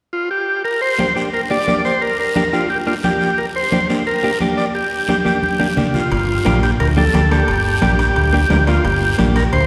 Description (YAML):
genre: latin, cumbia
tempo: 176 BPM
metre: 4/4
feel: straight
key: G minor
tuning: A4 = 440 Hz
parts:
  - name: overdriven combo organ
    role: melody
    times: 0.1-9.7 s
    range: F4 to D5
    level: -20 LUFS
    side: equal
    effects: none
  - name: guiro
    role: percussion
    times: 0.7-9.7 s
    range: none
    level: -34 LUFS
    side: equal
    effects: none
  - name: clean electric guitar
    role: accompaniment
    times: 1.0-9.4 s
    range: Bb3 to Bb4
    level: -23 LUFS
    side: equal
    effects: none
  - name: congas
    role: percussion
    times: 1.0-9.4 s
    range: none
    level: -25 LUFS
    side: equal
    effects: none
  - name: deep dub fingered electric bass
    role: bass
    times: 6.1-9.7 s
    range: G1 to D2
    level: -19 LUFS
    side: equal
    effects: none
  - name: timbales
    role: percussion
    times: 6.1-9.7 s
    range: none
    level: -30 LUFS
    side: equal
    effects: none
room: wet church reverb, RT60 2.8 s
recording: recorded in a church or concert hall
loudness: -17 LUFS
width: mono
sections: 0.7-6.1 A section; 6.1-9.7 B section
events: drum fill 5.3-6.1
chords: 0.0 N.C.; 0.7 Gm